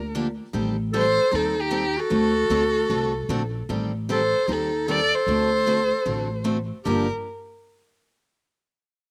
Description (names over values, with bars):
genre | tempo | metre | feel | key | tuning
acoustic string swing (jazz manouche) | 152 BPM | 4/4 | swing 64% on 8ths | G minor | A4 = 440 Hz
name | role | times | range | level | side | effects
warm violin | melody | 0.0-7.1 s | G4 to D5 | -26 LUFS | equal | none
growling clarinet | second line | 0.0-7.1 s | Eb4 to A4 | -30 LUFS | equal | slapback echo
upright bass | bass | 0.0-7.1 s | G1 to Eb2 | -31 LUFS | equal | none
picked steel-string acoustic guitar | accompaniment | 0.1-7.1 s | G2 to A4 | -30 LUFS | equal | slapback echo
room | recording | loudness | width
little or no reverb | recorded outdoors, with no room sound | -23 LUFS | mono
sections
0.5-6.9 A section; 6.9-8.4 B section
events
none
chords
0.0 Gm7; 0.5 Am7b5; 2.1 D7; 3.7 Am7b5; 5.3 D7; 6.9 Gm7